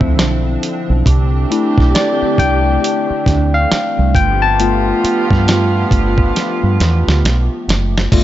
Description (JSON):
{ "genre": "R&B, neo-soul", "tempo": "68 BPM", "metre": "4/4", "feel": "swing 62% on 16ths", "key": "unclear", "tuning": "A4 = 437 Hz", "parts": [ { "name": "barky tine electric piano", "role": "accompaniment", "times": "0.0-8.2 s", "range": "F3 to A5", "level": "-17 LUFS", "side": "moving between left 6 dB and right 1 dB", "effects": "overdrive, auto-pan" }, { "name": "hollow soft pad", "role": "sustained chords", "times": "0.0-8.1 s", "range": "D3 to G4", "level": "-24 LUFS", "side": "right 1 dB", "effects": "ensemble chorus, tremolo" }, { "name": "clear saxophone section", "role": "stabs", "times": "0.0-8.2 s", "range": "B2 to G4", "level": "-22 LUFS", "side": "right 4 dB", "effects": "none" }, { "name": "deep dub fingered electric bass", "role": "bass", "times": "0.0-8.2 s", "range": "F#1 to G2", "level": "-15 LUFS", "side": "right 1 dB", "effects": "none" }, { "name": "dusty soul sampler-style drum kit", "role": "drums", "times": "0.0-8.2 s", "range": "crash cymbal, hi-hat, kick drum, ride cymbal, snare drum", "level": "-16 LUFS", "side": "right 1 dB", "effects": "none" } ], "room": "digital ambience", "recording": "nothing above 7.7 kHz", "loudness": "-12 LUFS", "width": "side -13 dB against mid", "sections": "0.0-8.1 A section", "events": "tine electric piano solo 0.0-8.1; drum fill 6.4-8.1", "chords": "0.0 Dm9; 4.1 G9" }